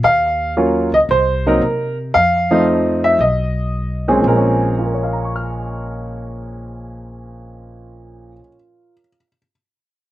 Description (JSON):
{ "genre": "jazz", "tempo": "114 BPM", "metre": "4/4", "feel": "swing 68% on 8ths", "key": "Bb minor", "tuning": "A4 = 439 Hz", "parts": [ { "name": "warm upright piano", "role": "melody", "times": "0.0-9.5 s", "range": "Bb2 to F6", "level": "-15 LUFS", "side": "equal", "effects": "none" }, { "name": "upright bass", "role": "bass", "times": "0.0-8.4 s", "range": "Bb1 to C3", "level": "-23 LUFS", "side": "left 1 dB", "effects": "none" } ], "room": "little or no reverb", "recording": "recorded outdoors, with no room sound", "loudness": "-14 LUFS", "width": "side -14 dB against mid", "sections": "0.0-4.2 A section; 4.2-8.5 B section", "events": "none", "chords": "0.0 Ebm9; 1.1 C7(no3); 2.1 F7; 3.2 B; 4.2 Bbm7" }